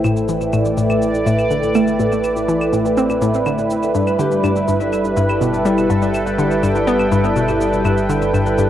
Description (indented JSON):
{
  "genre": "ambient, sequencer-driven space music",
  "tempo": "123 BPM",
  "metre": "4/4",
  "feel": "straight",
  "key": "G major",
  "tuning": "A4 = 439 Hz",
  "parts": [
    { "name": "sweeping resonant pad", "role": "sustained chords", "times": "0.0-8.7 s", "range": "G3 to G5", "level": "-17 LUFS", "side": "right 1 dB", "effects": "chorus, cassette tape" },
    { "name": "hollow square pluck", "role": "riff", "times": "0.0-8.7 s", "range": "G2 to C4", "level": "-19 LUFS", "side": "left 1 dB", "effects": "chorus, phaser, cassette tape, analog delay" },
    { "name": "warm sub bass", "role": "bass", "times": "0.0-8.7 s", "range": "G1 to A1", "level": "-31 LUFS", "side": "equal", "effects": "tube saturation" },
    { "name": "cabasa and claves", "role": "percussion", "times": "0.0-8.7 s", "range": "none", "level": "-32 LUFS", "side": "left 1 dB", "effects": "cassette tape, analog delay" },
    { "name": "concert harp", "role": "arpeggios", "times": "4.1-8.7 s", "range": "E4 to E5", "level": "-25 LUFS", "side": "left 7 dB", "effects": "auto-pan, cassette tape, analog delay" }
  ],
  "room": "wet spring reverb, RT60 2.5 s",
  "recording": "home recording on cassette",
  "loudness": "-14 LUFS",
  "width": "side -11 dB against mid",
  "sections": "0.0-8.7 A section",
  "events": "fade-in on sub bass 0.0-8.7",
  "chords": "0.0 Am7; 3.9 G6"
}